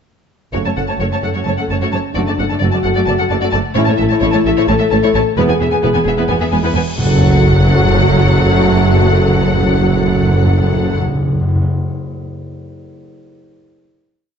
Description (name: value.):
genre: cinematic, epic orchestral film score.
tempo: 261 BPM (eighths).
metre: 7/8.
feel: straight.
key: F# minor.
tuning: A4 = 441 Hz.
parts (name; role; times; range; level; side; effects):
rich symphonic violin section; melody; 0.5-11.0 s; B4 to A5; -21 LUFS; left 4 dB; none.
dark studio violin section; second line; 0.5-11.0 s; E4 to D5; -23 LUFS; left 4 dB; none.
warm symphonic viola section; accompaniment; 0.5-11.0 s; F#3 to B3; -22 LUFS; right 1 dB; none.
mellow French horn section; sustained chords; 0.5-11.0 s; C#4 to A4; -20 LUFS; left 5 dB; none.
warm trombone section; sustained chords; 0.5-11.0 s; C#3 to C#4; -23 LUFS; right 4 dB; none.
mellow tuba; bass; 0.5-11.0 s; E1 to A1; -22 LUFS; right 5 dB; none.
rich symphonic cello section; bass; 0.5-10.9 s; E2 to A2; -20 LUFS; right 2 dB; none.
rich symphonic double bass section; bass; 0.5-11.0 s; E1 to A1; -20 LUFS; right 3 dB; none.
timpani; percussion; 2.1-2.8, 7.0-11.7 s; F#2; -16 LUFS; left 1 dB; none.
cymbal swell and sub drop; sound effects; 6.5-8.6 s; none; -24 LUFS; equal; none.
room: wet recital hall reverb, RT60 1.9 s.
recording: dark, warm production, nothing above 7.9 kHz.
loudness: -11 LUFS.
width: side -7 dB against mid.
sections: 0.5-7.0 theme; 7.0-10.2 final chord.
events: cymbal swell 6.5-7.0; impact 7.0-8.6.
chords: 0.5 F#m; 2.2 D/F#; 3.8 A; 5.4 E; 7.0 F#m.